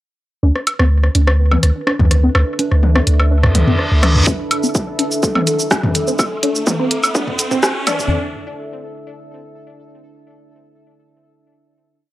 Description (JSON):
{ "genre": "minimal techno", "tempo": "125 BPM", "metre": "4/4", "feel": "straight", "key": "unclear", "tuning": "A4 = 437 Hz", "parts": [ { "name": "resonant blip pluck", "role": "riff", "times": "0.4-7.9 s", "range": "C4 to D4", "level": "-22 LUFS", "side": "equal", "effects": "phaser, analog chorus, sidechain pumping, tape echo" }, { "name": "punchy sub bass", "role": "bass", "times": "0.4-4.2 s", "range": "D2", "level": "-12 LUFS", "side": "equal", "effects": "sidechain pumping" }, { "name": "deep dark ambient pad", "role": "texture", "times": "1.8-8.1 s", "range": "D4 to E5", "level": "-27 LUFS", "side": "right 1 dB", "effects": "chorus, built-in reverb, sidechain pumping" }, { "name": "pulsing gated texture", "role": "texture", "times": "1.0-8.1 s", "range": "A4 to B4", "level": "-27 LUFS", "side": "right 1 dB", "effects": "chorus, built-in reverb, sidechain pumping" }, { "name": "organic electronic drum kit", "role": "percussion", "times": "0.6-8.1 s", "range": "rim click, toms, woodblock", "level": "-18 LUFS", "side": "left 1 dB", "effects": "overdrive, analog delay" }, { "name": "punchy analog drum machine", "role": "drums", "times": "0.7-8.1 s", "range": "cabasa, hi-hat, rim click", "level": "-19 LUFS", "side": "right 1 dB", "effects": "overdrive" }, { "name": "reverse cymbal and riser", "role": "sound effects", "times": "3.5-8.1 s", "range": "none", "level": "-23 LUFS", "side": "equal", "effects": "none" }, { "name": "electronic kick drum", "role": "drums", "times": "4.3-7.7 s", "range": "none", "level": "-19 LUFS", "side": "equal", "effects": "overdrive, high-pass filter on kick, high-pass filter on room" } ], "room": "light reverb", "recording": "dry, gritty hardware recording, transformer saturation, cassette tape, high-pass filter", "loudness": "-13 LUFS", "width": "side -16 dB against mid", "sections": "0.4-4.3 intro; 4.3-8.1 build", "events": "reverse cymbal 3.5-4.3; build-up 4.3-8.1; riser 4.3-8.1; filter sweep on synth pluck 4.3-8.1", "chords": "0.4 D5" }